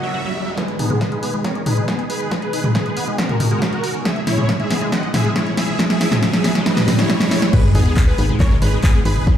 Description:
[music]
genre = uplifting trance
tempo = 138 BPM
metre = 4/4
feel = straight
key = G# minor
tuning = A4 = 440 Hz
[part]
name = supersaw chords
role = melody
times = 0.0-9.3 s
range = B3 to F#5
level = -24 LUFS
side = equal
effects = analog chorus, sidechain pumping, low-pass filter, ping-pong delay
[part]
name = clear grand piano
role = second line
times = 0.0-0.5 s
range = F#4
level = -33 LUFS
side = right 3 dB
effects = ping-pong delay
[part]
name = lush unison pad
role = sustained chords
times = 0.0-9.4 s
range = B2 to A#4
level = -28 LUFS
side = equal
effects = chorus, vintage 12-bit sampler grit, sidechain pumping
[part]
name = liquid acid bass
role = arpeggios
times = 0.0-9.4 s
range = F#3 to F#4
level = -26 LUFS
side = left 1 dB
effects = analog chorus, sidechain pumping, digital delay
[part]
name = riser and sub drop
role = sound effects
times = 0.0-9.3 s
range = none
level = -24 LUFS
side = right 1 dB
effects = none
[part]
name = electronic kick drum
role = drums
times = 0.6-9.4 s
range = none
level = -18 LUFS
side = equal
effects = high-pass filter on kick, high-pass filter on room
[part]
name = punchy analog drum machine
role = drums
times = 0.6-9.4 s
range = crash cymbal, handclaps, hi-hat, snare drum, toms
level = -19 LUFS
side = equal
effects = none
[part]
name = analog pluck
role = second line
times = 7.5-9.3 s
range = G#4 to C#5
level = -31 LUFS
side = equal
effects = chorus, sidechain pumping, digital delay
[part]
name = tight sequencer bass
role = bass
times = 7.7-9.2 s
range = G#1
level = -17 LUFS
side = left 1 dB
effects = sidechain pumping
[sound]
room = light reverb, digital ambience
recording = played on a big sound system in a bare room, large studio reverb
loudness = -15 LUFS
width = side -10 dB against mid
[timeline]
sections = 0.6-7.5 A section; 7.5-9.4 B section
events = riser 0.0-0.6, 0.6-7.5; build-up 0.6-7.5; drum fill 0.6-7.5; filter sweep on supersaw synth 0.6-7.5; filter sweep on acid bass 0.6-7.5; drop 7.5-9.4; impact 7.5-9.3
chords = 0.0 F#; 0.6 G#m; 4.1 E; 7.5 G#m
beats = 0.14 | 0.57 1.01 1.45 1.88 | 2.31 2.75 3.18 3.62 | 4.05 4.49 4.92 5.36 | 5.79 6.23 6.66 7.10 | 7.53 7.97 8.40 8.84 | 9.27

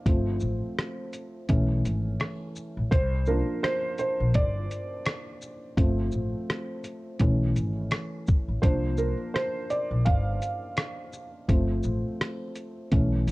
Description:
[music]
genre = lo-fi hip hop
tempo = 84 BPM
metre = 4/4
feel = swing 59% on 16ths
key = unclear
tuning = A4 = 440 Hz
[part]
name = felt-muted upright piano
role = accompaniment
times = 0.0-13.3 s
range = E3 to F5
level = -30 LUFS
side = right 1 dB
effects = cassette tape, low-pass filter
[part]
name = upright bass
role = bass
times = 0.1-13.3 s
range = G1 to C2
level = -27 LUFS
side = equal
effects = none
[part]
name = dusty soul sampler-style drum kit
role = drums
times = 0.1-13.3 s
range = hi-hat, kick drum, rim click, shaker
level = -25 LUFS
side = equal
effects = none
[sound]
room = small room ambience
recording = cassette tape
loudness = -24 LUFS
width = side -20 dB against mid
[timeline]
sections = 0.0-13.3 A section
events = felt piano solo 0.0-13.3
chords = 0.1 G9sus4; 1.5 B9sus4; 2.9 C9sus4; 5.8 G9sus4; 7.2 B9sus4; 8.6 C9sus4; 11.5 G9sus4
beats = | 0.06 0.77 1.49 2.20 | 2.91 3.63 4.34 5.06 | 5.77 6.49 7.20 7.91 | 8.63 9.34 10.06 10.77 | 11.48 12.20 12.91

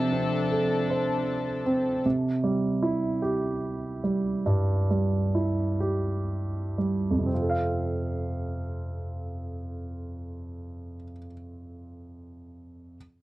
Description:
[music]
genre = pop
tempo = 38-52 BPM (dotted quarters)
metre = 6/8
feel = straight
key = F major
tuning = A4 = 436 Hz
[part]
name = warm grand piano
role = accompaniment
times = 0.0-13.0 s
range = F2 to F5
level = -26 LUFS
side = right 1 dB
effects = none
[part]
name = warm studio string section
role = sustained chords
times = 0.0-2.0 s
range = F3 to A4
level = -30 LUFS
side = left 5 dB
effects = none
[sound]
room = little or no reverb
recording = dry, close 1970s-style studio recording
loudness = -25 LUFS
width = side -17 dB against mid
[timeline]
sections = 0.0-7.3 A section; 7.3-10.5 B section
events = slowing down 2.1-7.3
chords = 0.0 F; 2.1 C; 7.3 F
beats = 0.89 | 2.05 3.23 | 4.47 5.82 | 7.31 8.89

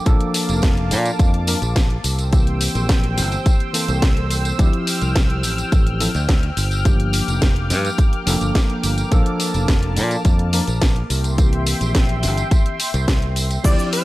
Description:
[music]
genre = nu-disco, nu disco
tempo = 106 BPM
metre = 4/4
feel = straight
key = C mixolydian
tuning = A4 = 440 Hz
[part]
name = mellow tine electric piano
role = accompaniment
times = 0.0-14.0 s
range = E3 to Bb4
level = -25 LUFS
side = left 1 dB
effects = overdrive, sidechain pumping, tape echo
[part]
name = lush unison pad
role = sustained chords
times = 0.0-14.0 s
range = Bb3 to F6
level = -27 LUFS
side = equal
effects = chorus, phaser, sidechain pumping
[part]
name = fingered electric bass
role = bass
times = 0.1-13.7 s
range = F1 to Bb2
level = -21 LUFS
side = equal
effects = none
[part]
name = electronic kick drum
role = drums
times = 0.1-13.8 s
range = none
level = -16 LUFS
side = equal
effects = none
[part]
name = house drum kit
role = drums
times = 0.1-14.0 s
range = crash cymbal, hi-hat, shaker, snare drum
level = -25 LUFS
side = left 1 dB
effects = none
[part]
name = tambourine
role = percussion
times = 0.1-13.6 s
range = none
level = -29 LUFS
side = right 3 dB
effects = none
[part]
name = wide unison lead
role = melody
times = 13.7-14.0 s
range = C5 to D5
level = -23 LUFS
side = equal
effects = none
[sound]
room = little or no reverb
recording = none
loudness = -16 LUFS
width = side -17 dB against mid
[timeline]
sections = 0.0-13.6 A section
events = none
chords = 0.1 Bbmaj7; 2.0 C7; 4.6 Dm11; 6.9 Gm7; 9.1 Bbmaj7; 11.1 C7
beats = | 0.06 0.63 1.20 1.76 | 2.33 2.89 3.46 4.03 | 4.59 5.16 5.72 6.29 | 6.86 7.42 7.99 8.55 | 9.12 9.69 10.25 10.82 | 11.38 11.95 12.52 13.08 | 13.65

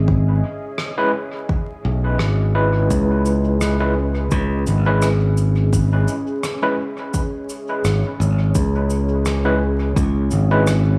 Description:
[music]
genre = ambient dub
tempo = 85 BPM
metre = 4/4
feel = swing 55% on 16ths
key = C# minor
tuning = A4 = 440 Hz
[part]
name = deep dark ambient pad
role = sustained chords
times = 0.0-11.0 s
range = C#4 to E5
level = -30 LUFS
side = equal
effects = chorus, built-in reverb
[part]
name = modern bright fingered electric bass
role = bass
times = 0.0-11.0 s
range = G#1 to C#2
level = -20 LUFS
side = equal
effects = none
[part]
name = electronic kick drum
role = drums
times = 0.1-10.1 s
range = none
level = -24 LUFS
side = equal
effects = none
[part]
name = rim click and cabasa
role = drums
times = 0.8-10.8 s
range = none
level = -32 LUFS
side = equal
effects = dub echo
[part]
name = overdriven tine electric piano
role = stabs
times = 1.0-10.7 s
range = G#3 to B4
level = -25 LUFS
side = equal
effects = medium tremolo, low-pass filter, dub echo
[sound]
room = light reverb, small room ambience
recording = vinyl crackle, studio reverb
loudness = -19 LUFS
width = mono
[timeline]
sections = 0.0-11.0 A section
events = fade-in on ambient pad 0.0-11.0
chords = 0.0 C#m7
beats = | 0.08 0.79 1.49 2.20 | 2.90 3.61 4.32 5.02 | 5.73 6.43 7.14 7.84 | 8.55 9.26 9.96 10.67

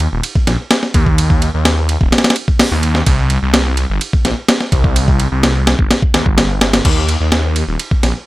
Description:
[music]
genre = breakbeat, breaks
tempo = 127 BPM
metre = 4/4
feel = straight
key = unclear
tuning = A4 = 441 Hz
[part]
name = phased detuned saw bass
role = bass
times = 0.0-8.1 s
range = Eb1 to Eb2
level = -15 LUFS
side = equal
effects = phaser, tube saturation
[part]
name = breakbeat sampler-style drum kit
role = drums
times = 0.0-8.1 s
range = crash cymbal, hi-hat, kick drum, ride cymbal, snare drum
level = -13 LUFS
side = equal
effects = none
[sound]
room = little or no reverb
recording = none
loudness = -11 LUFS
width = side -18 dB against mid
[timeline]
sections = 0.0-6.8 A section; 6.8-8.3 A section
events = drop 0.0-6.8, 6.8-8.3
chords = none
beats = 0.23 0.71 | 1.18 1.65 2.12 2.60 | 3.07 3.54 4.01 4.49 | 4.96 5.43 5.90 6.38 | 6.85 7.32 7.79

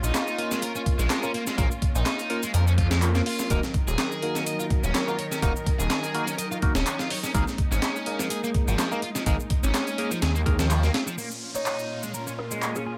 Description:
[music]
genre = breakbeat, breaks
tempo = 125 BPM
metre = 4/4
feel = swing 54% on 16ths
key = Bb minor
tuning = A4 = 440 Hz
[part]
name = dark studio string section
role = sustained chords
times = 0.0-13.0 s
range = Bb2 to Bb4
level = -36 LUFS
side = equal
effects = vintage 12-bit sampler grit, sidechain pumping
[part]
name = overdriven electric guitar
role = riff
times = 0.0-12.9 s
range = F3 to Eb5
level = -34 LUFS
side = equal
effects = low-pass filter, dub echo
[part]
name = phased detuned saw bass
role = bass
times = 0.0-10.9 s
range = Eb1 to F2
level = -26 LUFS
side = equal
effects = phaser
[part]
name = electronic shaker and handclaps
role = drums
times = 0.0-12.8 s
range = none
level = -35 LUFS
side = equal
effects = none
[part]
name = breakbeat sampler-style drum kit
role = drums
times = 0.1-11.1 s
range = hi-hat, kick drum, snare drum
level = -29 LUFS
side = equal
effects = none
[part]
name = barky tine electric piano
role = stabs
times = 0.4-10.6 s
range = Bb3 to Bb4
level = -35 LUFS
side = equal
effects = phaser, dub echo
[part]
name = downlifter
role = sound effects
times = 11.2-13.0 s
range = none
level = -40 LUFS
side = equal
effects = none
[part]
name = kalimba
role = melody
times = 11.6-13.0 s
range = Ab4 to Db5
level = -36 LUFS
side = equal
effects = old record sound, dub echo
[sound]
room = light reverb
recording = none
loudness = -26 LUFS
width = mono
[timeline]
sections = 0.0-11.2 A section; 11.2-13.0 B section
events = band accent 10.7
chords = 0.0 Bbm; 3.5 Ebm; 7.3 Absus2; 11.2 Bbm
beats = 0.15 0.63 1.11 | 1.59 2.07 2.55 3.03 | 3.51 3.99 4.47 4.95 | 5.43 5.91 6.39 6.87 | 7.35 7.83 8.31 8.79 | 9.27 9.75 10.23 10.71 | 11.19 11.67 12.15 12.63

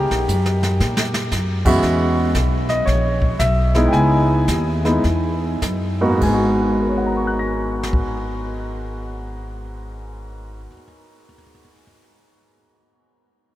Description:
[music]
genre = jazz piano trio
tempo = 99-116 BPM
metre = 4/4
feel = swing 66% on 8ths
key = G# minor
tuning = A4 = 443 Hz
[part]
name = warm grand piano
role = melody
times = 0.0-11.8 s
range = E2 to A#6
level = -20 LUFS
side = equal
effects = none
[part]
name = upright bass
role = bass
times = 0.0-10.6 s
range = G#1 to A#2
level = -21 LUFS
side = equal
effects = none
[part]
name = jazz brush drum kit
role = drums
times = 0.1-8.0 s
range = brushed snare drum, crash cymbal, hi-hat, kick drum, snare drum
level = -25 LUFS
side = equal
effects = none
[sound]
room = wet huge ambient reverb, RT60 7.1 s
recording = in a vast, echoing space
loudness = -16 LUFS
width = side -14 dB against mid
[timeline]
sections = 0.0-1.8 A section; 1.8-6.2 B section; 6.2-11.1 C section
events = drum fill 0.3-1.3; slowing down 1.8-6.2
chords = 0.0 E6; 3.9 C#m7; 6.2 G#m7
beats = 0.28 0.80 1.31 | 1.83 2.35 2.87 3.39 | 3.93 4.48 5.04 5.62 | 6.22 6.82 7.43 8.03 | 8.64 9.24 9.85 10.46

